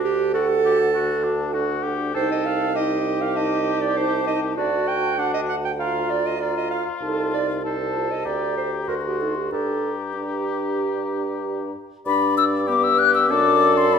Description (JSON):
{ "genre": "quick classical-period movement for wind quintet", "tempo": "97 BPM", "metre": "4/4", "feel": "rubato", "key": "G minor", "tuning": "A4 = 440 Hz", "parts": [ { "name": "mellow hollow silver concert flute", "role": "melody", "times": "0.0-14.0 s", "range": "F#5 to F#6", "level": "-25 LUFS", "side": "left 8 dB", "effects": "none" }, { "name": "warm oboe", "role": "second line", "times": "0.0-14.0 s", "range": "D4 to D5", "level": "-28 LUFS", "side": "left 5 dB", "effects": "none" }, { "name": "clear clarinet", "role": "accompaniment", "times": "0.0-14.0 s", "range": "G4 to G5", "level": "-24 LUFS", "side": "right 6 dB", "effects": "none" }, { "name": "mellow French horn", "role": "accompaniment", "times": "0.0-14.0 s", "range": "B3 to G4", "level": "-29 LUFS", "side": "left 1 dB", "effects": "none" }, { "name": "mellow bassoon", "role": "bass", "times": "0.0-14.0 s", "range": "C2 to G2", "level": "-26 LUFS", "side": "right 2 dB", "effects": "none" } ], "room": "wet recital hall reverb, RT60 1.4 s", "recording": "minimal, uncompressed stereo recording", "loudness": "-20 LUFS", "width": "side -6 dB against mid", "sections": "0.0-12.1 A section; 12.1-14.0 A section", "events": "none", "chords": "0.0 D; 2.2 Cm; 3.4 Adim/C; 4.6 D; 5.8 Bb/D; 7.0 Adim/C; 8.3 Gm/D; 8.9 D7; 9.5 Gm; 12.1 G; 13.3 D/F#" }